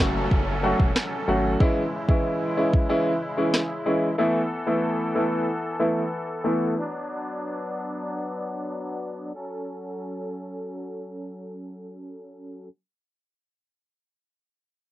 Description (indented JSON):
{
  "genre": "dancehall",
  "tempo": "93 BPM",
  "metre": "4/4",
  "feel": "straight",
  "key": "F# minor",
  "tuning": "A4 = 443 Hz",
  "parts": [
    { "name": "clear concert grand piano", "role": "accompaniment", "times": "0.0-6.7 s", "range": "E3 to F#4", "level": "-23 LUFS", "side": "equal", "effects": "sidechain pumping, low-pass filter, cassette tape" },
    { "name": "musette accordion", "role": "sustained chords", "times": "0.0-12.7 s", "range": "C#3 to A4", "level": "-31 LUFS", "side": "left 1 dB", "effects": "sidechain pumping, low-pass filter, cassette tape" },
    { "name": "round analog bass", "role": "bass", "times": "0.0-1.6 s", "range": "E1 to G#1", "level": "-29 LUFS", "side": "equal", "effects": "none" },
    { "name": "afro-pop drum kit", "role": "drums", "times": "0.0-3.7 s", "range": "kick drum, rim click, snare drum", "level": "-21 LUFS", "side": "equal", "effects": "cassette tape" },
    { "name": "downlifter", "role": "sound effects", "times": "0.0-4.2 s", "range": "none", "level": "-36 LUFS", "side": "equal", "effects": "none" }
  ],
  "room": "light reverb",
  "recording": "home recording on cassette",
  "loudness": "-23 LUFS",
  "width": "side -15 dB against mid",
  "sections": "0.0-9.3 A section; 9.3-11.9 B section",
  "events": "filter sweep 0.0-9.3",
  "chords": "0.0 F#m; 1.6 C#m; 4.2 Esus4; 6.8 Bm; 9.3 F#m",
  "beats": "0.31 0.96 | 1.60 2.25 2.89 3.54 | 4.18 4.83 5.47 6.12 | 6.76 7.41 8.05 8.70 | 9.35 9.99 10.63 11.28"
}